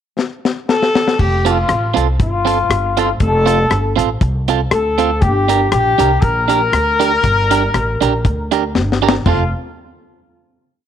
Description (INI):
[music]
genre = ska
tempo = 119 BPM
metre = 4/4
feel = swing 53% on 8ths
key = F major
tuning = A4 = 437 Hz
[part]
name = deep reggae drum kit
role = drums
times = 0.2-9.4 s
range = crash cymbal, hi-hat, kick drum, rim click, snare drum, toms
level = -18 LUFS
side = left 3 dB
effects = none
[part]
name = warm horn section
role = melody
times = 0.7-9.5 s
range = F4 to Bb4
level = -16 LUFS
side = left 3 dB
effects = none
[part]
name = upright bass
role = bass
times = 1.2-9.5 s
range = F1 to D2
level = -18 LUFS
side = equal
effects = none
[part]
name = electric guitar at the edge of break-up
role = accompaniment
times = 1.5-9.4 s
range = C4 to Bb4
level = -19 LUFS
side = right 11 dB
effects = none
[sound]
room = light reverb, small room ambience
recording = 1960s-style stereo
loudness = -13 LUFS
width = side -9 dB against mid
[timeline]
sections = 0.0-1.2 pickup bar; 1.2-9.3 head; 9.3-10.9 final chord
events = drum fill 0.2-1.2, 8.8-9.3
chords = 0.0 N.C.; 1.2 F; 5.2 Gm; 9.3 F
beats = 0.17 0.68 | 1.19 1.69 2.20 2.70 | 3.21 3.71 4.22 4.72 | 5.22 5.73 6.23 6.74 | 7.24 7.74 8.25 8.75 | 9.26